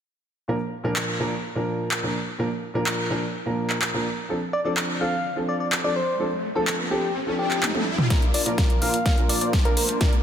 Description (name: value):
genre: EDM, festival progressive house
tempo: 126 BPM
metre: 4/4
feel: straight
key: Bb major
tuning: A4 = 440 Hz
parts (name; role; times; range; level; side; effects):
- dark grand piano; accompaniment; 0.5-10.1 s; Bb2 to Bb4; -27 LUFS; right 1 dB; sidechain pumping, tape echo
- big-room dance drum kit; drums; 1.0-10.2 s; handclaps, hi-hat, snare drum, toms; -27 LUFS; equal; none
- riser; sound effects; 5.3-10.2 s; none; -33 LUFS; equal; none
- soft struck synth lead; melody; 4.5-9.8 s; G4 to F5; -27 LUFS; left 1 dB; chorus, cassette tape, tape echo
- supersaw chords; riff; 8.1-10.2 s; Bb3 to F5; -29 LUFS; right 1 dB; wide subtle chorus, sidechain pumping, low-pass filter
- electronic kick drum; drums; 8.1-10.1 s; none; -21 LUFS; equal; none
room: moderate lush hall reverb, RT60 1.8 s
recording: dense, heavily limited modern master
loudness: -22 LUFS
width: side -9 dB against mid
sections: 0.5-8.1 A section; 8.1-10.2 B section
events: riser 5.3-8.1; drum fill 7.6-8.1, 8.1-10.2; build-up 8.1-10.2; filter sweep on supersaw synth 8.1-10.2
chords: 0.5 Bb; 4.3 Dm7; 8.1 Bb